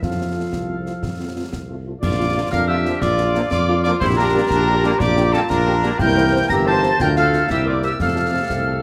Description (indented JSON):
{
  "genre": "military-style march for wind band",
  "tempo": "120 BPM (dotted quarters)",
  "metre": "6/8",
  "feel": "straight",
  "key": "F major",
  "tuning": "A4 = 440 Hz",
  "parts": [
    { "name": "mellow cornet", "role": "melody", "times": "0.0-8.8 s", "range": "A4 to Bb5", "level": "-25 LUFS", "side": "equal", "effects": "none" },
    { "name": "clear woodwind section", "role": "second line", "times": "0.0-8.8 s", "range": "C4 to F5", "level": "-30 LUFS", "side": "equal", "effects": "none" },
    { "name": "warm euphonium", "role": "second line", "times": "0.0-8.8 s", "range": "C4 to G4", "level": "-27 LUFS", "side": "equal", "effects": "none" },
    { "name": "mellow trombone section", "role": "sustained chords", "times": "0.0-8.8 s", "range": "C3 to Bb3", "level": "-30 LUFS", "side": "equal", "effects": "none" },
    { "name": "mellow tuba", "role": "bass", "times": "0.0-8.8 s", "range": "G1 to F2", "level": "-24 LUFS", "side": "equal", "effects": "none" },
    { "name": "concert snare drum, concert bass drum and clash cymbals", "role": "drums", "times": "0.0-8.7 s", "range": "none", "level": "-29 LUFS", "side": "equal", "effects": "none" },
    { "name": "mellow French horn section", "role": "accompaniment", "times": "0.2-8.7 s", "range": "A3 to C5", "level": "-31 LUFS", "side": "equal", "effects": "none" },
    { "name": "bright wooden piccolo", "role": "second line", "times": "2.0-8.8 s", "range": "A5 to Bb6", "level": "-28 LUFS", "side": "equal", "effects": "none" },
    { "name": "glockenspiel with soft plastic mallets", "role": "second line", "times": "2.0-8.8 s", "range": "A5 to Bb6", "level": "-30 LUFS", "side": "equal", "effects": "none" }
  ],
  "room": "moderate recital hall reverb, RT60 1.5 s",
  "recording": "none",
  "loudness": "-18 LUFS",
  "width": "mono",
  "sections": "0.0-2.0 A section; 2.0-8.8 A section",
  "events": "none",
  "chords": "0.0 F; 2.0 Bb; 4.0 Gm/Bb; 6.0 C7; 7.0 Dm; 7.5 C7; 8.0 F",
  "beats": "| 0.03 0.53 | 1.03 1.53 | 2.02 2.52 | 3.02 3.52 | 4.02 4.51 | 5.01 5.51 | 6.01 6.50 | 7.00 7.50 | 8.00 8.50"
}